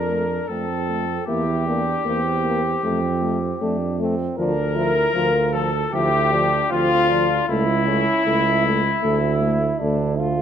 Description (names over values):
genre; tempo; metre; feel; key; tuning
classical, brass quintet; 77 BPM; 4/4; rubato; F major; A4 = 440 Hz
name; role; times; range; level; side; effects
warm trumpet; melody; 0.0-10.2 s; E4 to Bb4; -22 LUFS; left 8 dB; none
clear flugelhorn; second line; 0.0-10.1 s; E4 to Bb4; -26 LUFS; right 6 dB; none
clear trombone; accompaniment; 0.0-10.4 s; A3 to F4; -27 LUFS; right 2 dB; none
warm tuba; bass; 0.0-10.4 s; C#2 to F2; -24 LUFS; right 4 dB; none
mellow French horn; accompaniment; 0.1-10.4 s; F3 to Bb3; -28 LUFS; left 3 dB; none
room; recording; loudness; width
moderate concert hall reverb, RT60 2.1 s; close, detailed microphones; -18 LUFS; side -8 dB against mid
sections
0.0-10.4 A section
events
none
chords
0.0 F; 1.3 C7/E; 2.8 F; 4.4 Dm; 7.5 A/C#; 9.0 D5